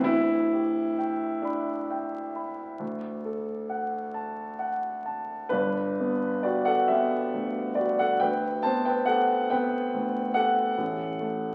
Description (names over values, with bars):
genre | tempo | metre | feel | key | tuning
classical, romantic nocturne for solo piano | 43-49 BPM (dotted quarters) | 12/8 | rubato | G major | A4 = 440 Hz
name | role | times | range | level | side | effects
warm grand piano | solo | 0.0-11.5 s | G1 to B5 | -27 LUFS | equal | none
room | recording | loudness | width
wet large studio reverb, RT60 1.4 s | very old 78 rpm record, vinyl crackle | -28 LUFS | mono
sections
0.0-5.5 A section; 5.5-11.5 B section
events
none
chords
0.1 G/D; 2.8 D; 5.5 G; 10.8 Esus4/A (rootless)